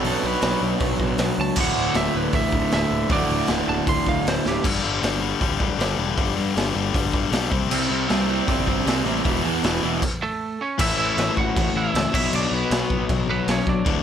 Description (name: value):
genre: punk rock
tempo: 156 BPM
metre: 4/4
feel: straight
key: D major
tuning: A4 = 439 Hz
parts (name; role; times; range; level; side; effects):
- lightly driven lead guitar; melody; 0.0-4.6, 10.2-14.0 s; A3 to C6; -26 LUFS; right 4 dB; none
- cranked stack guitar; riff; 0.0-14.0 s; D2 to C4; -24 LUFS; left 9 dB; overdrive
- crunchy overdriven guitar; riff; 0.0-4.6, 7.7-10.0 s; D2 to B4; -26 LUFS; right 15 dB; none
- fuzz picked electric bass; bass; 0.0-14.0 s; D1 to G2; -28 LUFS; equal; overdrive
- raw garage drum kit; drums; 0.0-13.9 s; crash cymbal, hi-hat, kick drum, snare drum; -24 LUFS; equal; none
room: light reverb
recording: none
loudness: -19 LUFS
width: side -9 dB against mid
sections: 0.0-4.6 A section; 4.6-10.8 B section; 10.8-14.0 C section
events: lead electric guitar solo 0.0-4.6; drum fill 4.4; stop 10.0-10.8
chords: 0.0 Bm; 1.6 D; 4.6 G5; 7.5 C5; 9.2 E5; 10.8 A5; 12.1 Bm